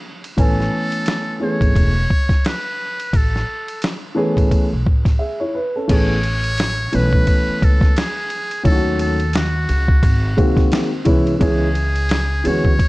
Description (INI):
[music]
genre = hip hop, jazz-hop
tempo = 87 BPM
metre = 4/4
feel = swing 59% on 16ths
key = A major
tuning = A4 = 440 Hz
[part]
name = lo-fi sampler-style drum kit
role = drums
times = 0.2-12.9 s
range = crash cymbal, hi-hat, kick drum, ride cymbal, snare drum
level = -18 LUFS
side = equal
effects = vintage 12-bit sampler grit
[part]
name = trumpet with metal mute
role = melody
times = 0.4-12.9 s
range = F#4 to C#5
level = -24 LUFS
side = equal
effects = none
[part]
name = dark grand piano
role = accompaniment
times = 0.4-12.7 s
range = D#3 to G#5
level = -19 LUFS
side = equal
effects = none
[part]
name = upright bass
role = bass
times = 0.4-12.7 s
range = E1 to A2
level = -20 LUFS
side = equal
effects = none
[sound]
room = studio ambience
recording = dark, warm production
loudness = -15 LUFS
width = side -20 dB against mid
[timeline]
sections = 0.0-5.9 A section; 5.9-12.9 B section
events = break 5.2-5.9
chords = 0.4 Amaj7; 8.7 D#m7b5; 10.0 G#7; 11.4 C#m7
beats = | 0.38 1.07 1.76 2.45 | 3.14 3.83 4.51 5.21 | 5.89 6.58 7.27 7.96 | 8.65 9.34 10.03 10.72 | 11.41 12.10 12.79